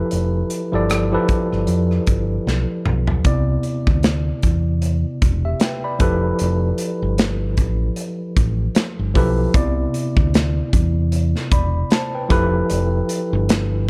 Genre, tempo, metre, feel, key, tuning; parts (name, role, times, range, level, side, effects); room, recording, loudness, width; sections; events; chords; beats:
lush 1970s-style soul; 76 BPM; 4/4; swing 58% on 16ths; C major; A4 = 442 Hz
tine electric piano; accompaniment; 0.0-13.9 s; C3 to B5; -24 LUFS; equal
fingered electric bass; bass; 0.1-13.9 s; E1 to F2; -22 LUFS; equal
modern studio drum kit; drums; 0.1-13.7 s; hi-hat, kick drum, rim click, snare drum, toms; -22 LUFS; equal
little or no reverb; -19 LUFS; mono
0.0-3.3 A section; 3.3-13.9 B section
drum fill 2.5-3.3
0.0 Fmaj9#11; 3.3 Cmaj9; 6.0 Fmaj9#11; 9.5 Cmaj9; 12.3 Fmaj9#11
| 0.11 0.89 1.68 2.47 | 3.25 4.04 4.83 5.62 | 6.40 7.19 7.98 8.76 | 9.55 10.34 11.12 11.91 | 12.70 13.48